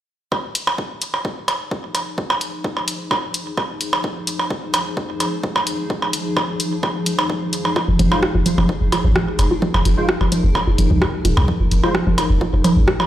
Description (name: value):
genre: minimal techno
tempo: 129 BPM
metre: 4/4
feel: straight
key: F minor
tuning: A4 = 440 Hz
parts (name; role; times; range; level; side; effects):
- electronic kick drum; drums; 0.3-13.0 s; none; -26 LUFS; left 1 dB; high-pass filter on kick
- percussion blips; percussion; 0.3-13.1 s; none; -22 LUFS; right 2 dB; digital delay
- granular cloud pad; texture; 1.8-13.1 s; F3 to C5; -25 LUFS; left 1 dB; built-in reverb, sidechain pumping
- punchy analog drum machine; drums; 0.6-13.0 s; hi-hat, rim click; -22 LUFS; equal; none
- hollow square pluck; riff; 7.8-13.0 s; F3 to F4; -21 LUFS; right 1 dB; chorus, sidechain pumping, digital delay
- punchy sub bass; bass; 7.9-12.8 s; Eb1 to C2; -17 LUFS; equal; sidechain pumping
- percussive organ stab; stabs; 8.1-11.9 s; Ab3 to C5; -26 LUFS; right 1 dB; ensemble chorus, digital delay
room: moderate small room reverb, RT60 0.5 s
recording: played on a big sound system in a bare room, stone room reverb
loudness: -17 LUFS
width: side -12 dB against mid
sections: 0.3-13.1 A section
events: fade-in on ambient pad 0.3-13.1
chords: 0.3 Fm